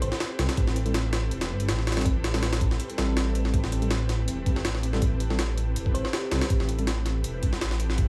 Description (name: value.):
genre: drum and bass, jungle.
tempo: 162 BPM.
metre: 4/4.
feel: swing 54% on 16ths.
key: A minor.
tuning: A4 = 444 Hz.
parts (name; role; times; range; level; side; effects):
thumb-piano-like synth pluck; melody; 0.0-0.2, 5.9-6.7 s; G4 to C5; -39 LUFS; equal; chorus, dub echo.
ethereal airy pad; sustained chords; 0.0-8.1 s; C4 to B4; -38 LUFS; equal; ensemble chorus, built-in reverb, vintage 12-bit sampler grit.
dark detuned saw bass; bass; 0.0-8.1 s; E1 to C2; -30 LUFS; equal; none.
jungle sampler-style drum kit; drums; 0.0-8.1 s; hi-hat, kick drum, snare drum; -30 LUFS; equal; overdrive, small room reverb.
mellow tine electric piano; stabs; 0.4-6.9 s; G3 to A4; -36 LUFS; equal; dub echo.
room: little or no reverb.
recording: vinyl crackle, studio ambience.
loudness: -26 LUFS.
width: mono.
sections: 0.0-3.5 A section; 3.5-8.1 A section.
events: drop 0.0-3.5, 3.5-8.1.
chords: 0.0 Am7.